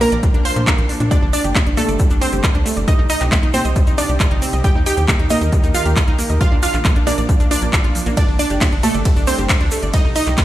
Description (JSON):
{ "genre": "uplifting trance", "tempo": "136 BPM", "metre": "4/4", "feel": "straight", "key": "G minor", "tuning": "A4 = 440 Hz", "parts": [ { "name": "wide unison pluck", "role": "melody", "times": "0.0-10.4 s", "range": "A3 to C6", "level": "-21 LUFS", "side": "right 1 dB", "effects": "sidechain pumping, ping-pong delay" }, { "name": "lush unison pad", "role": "sustained chords", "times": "0.0-10.4 s", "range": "C3 to Bb4", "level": "-27 LUFS", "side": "equal", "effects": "chorus, sidechain pumping" }, { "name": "analog pluck", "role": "arpeggios", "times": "0.0-10.4 s", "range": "F3 to F5", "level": "-24 LUFS", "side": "right 2 dB", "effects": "chorus, sidechain pumping, ping-pong delay" }, { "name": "techno drum kit", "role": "drums", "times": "0.0-10.4 s", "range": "congas, handclaps, hi-hat, ride cymbal", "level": "-22 LUFS", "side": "left 1 dB", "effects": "none" }, { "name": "tight sequencer bass", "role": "bass", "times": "0.1-10.4 s", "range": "G1 to Bb2", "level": "-20 LUFS", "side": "equal", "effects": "sidechain pumping" }, { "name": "electronic kick drum", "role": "drums", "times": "0.2-10.4 s", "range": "none", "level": "-16 LUFS", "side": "equal", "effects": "none" }, { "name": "tube shaker", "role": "percussion", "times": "1.1-10.4 s", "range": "none", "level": "-31 LUFS", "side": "right 3 dB", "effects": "none" } ], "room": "digital ambience", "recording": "played on a big sound system in a bare room, stone room reverb", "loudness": "-14 LUFS", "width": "side -14 dB against mid", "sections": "0.0-10.4 A section", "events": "none", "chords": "0.0 Bb; 1.1 Gsus2; 2.9 Cm; 4.6 Eb; 6.4 Bb; 8.2 Gsus2; 9.9 Cm", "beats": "0.23 0.67 | 1.11 1.55 2.00 2.44 | 2.88 3.32 3.76 4.20 | 4.64 5.08 5.53 5.97 | 6.41 6.85 7.29 7.73 | 8.17 8.61 9.05 9.49 | 9.94 10.38" }